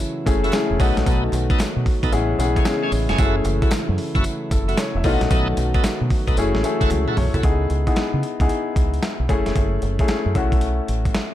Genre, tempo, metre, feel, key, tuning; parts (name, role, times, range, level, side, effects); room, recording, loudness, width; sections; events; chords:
R&B, new jack swing; 113 BPM; 4/4; swing 65% on 16ths; F# dorian; A4 = 440 Hz
clear baby grand piano; accompaniment; 0.0-11.3 s; G#3 to E5; -24 LUFS; left 4 dB
mellow brass ensemble; sustained chords; 0.0-7.4 s; C#3 to F#4; -29 LUFS; right 1 dB
dusty soul sampler-style drum kit; drums; 0.0-11.3 s; hi-hat, kick drum, snare drum, tambourine, toms; -21 LUFS; equal
deep dub fingered electric bass; bass; 0.3-11.1 s; E1 to C#3; -22 LUFS; equal
bright tonewheel organ; stabs; 0.4-7.4 s; A3 to A4; -29 LUFS; right 2 dB; overdrive, slow rotary speaker
group handclap; percussion; 0.5-7.1 s; -41 LUFS; right 5 dB
digital ambience; -18 LUFS; side -13 dB against mid
0.0-7.4 A section; 7.4-11.3 B section
drum fill 6.9-7.4
0.0 F#m7; 0.8 B7; 2.1 Amaj7; 3.2 F#m7; 5.0 B7; 6.4 F#m7; 7.4 C#m7; 9.3 F#m7; 10.4 B7sus4